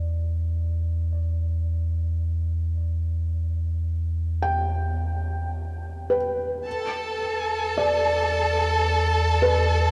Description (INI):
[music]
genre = ambient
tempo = 54 BPM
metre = 3/4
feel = straight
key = E minor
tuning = A4 = 440 Hz
[part]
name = felt-muted upright piano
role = arpeggios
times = 0.0-9.9 s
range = B4 to G5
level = -29 LUFS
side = equal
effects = tape echo
[part]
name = round analog bass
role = bass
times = 0.0-9.9 s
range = E2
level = -27 LUFS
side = equal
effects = none
[part]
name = rich chamber violin section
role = texture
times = 6.7-9.9 s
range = A4 to A5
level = -26 LUFS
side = equal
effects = none
[sound]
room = moderate huge ambient reverb, RT60 8.0 s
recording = cassette tape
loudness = -25 LUFS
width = mono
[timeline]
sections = 0.0-9.9 A section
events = fade-in on felt piano 0.0-9.9; fade-in on analog synth bass 0.0-9.9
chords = 0.0 Em7; 6.7 Bm7/E